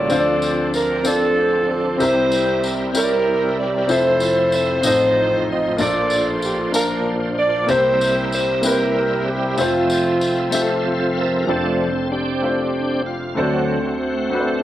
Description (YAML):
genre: slow gospel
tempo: 63 BPM (dotted quarters)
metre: 6/8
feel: straight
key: F major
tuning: A4 = 440 Hz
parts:
  - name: warm saxophone section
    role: melody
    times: 0.0-10.9 s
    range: A3 to Eb5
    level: -18 LUFS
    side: right 1 dB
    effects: none
  - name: clear grand piano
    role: accompaniment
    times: 0.0-14.6 s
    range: F1 to A5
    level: -22 LUFS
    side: left 2 dB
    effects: none
  - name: bright tonewheel organ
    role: sustained chords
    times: 0.0-14.6 s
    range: A2 to E5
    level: -22 LUFS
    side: right 1 dB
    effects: slow rotary speaker, overdrive, chorus vibrato
  - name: tambourine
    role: percussion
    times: 0.1-10.8 s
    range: none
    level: -28 LUFS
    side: left 2 dB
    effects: none
room: moderate echo chamber reverb, RT60 1.4 s, small room ambience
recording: worn, warbling old tape, cassette tape, warbly pitch drift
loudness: -16 LUFS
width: side -13 dB against mid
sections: 0.0-11.5 A section; 11.5-14.6 B section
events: tonewheel organ solo 11.5-14.6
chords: 0.1 Dm7; 2.0 C7; 3.9 Fmaj7; 4.8 F7/A; 5.8 Bbmaj7; 7.7 C7; 9.6 Fmaj7; 11.5 F69; 13.4 D7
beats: | 0.11 1.06 | 2.00 2.95 | 3.90 4.84 | 5.79 6.74 | 7.68 8.63 | 9.58 10.53 | 11.48 12.43 | 13.38 14.33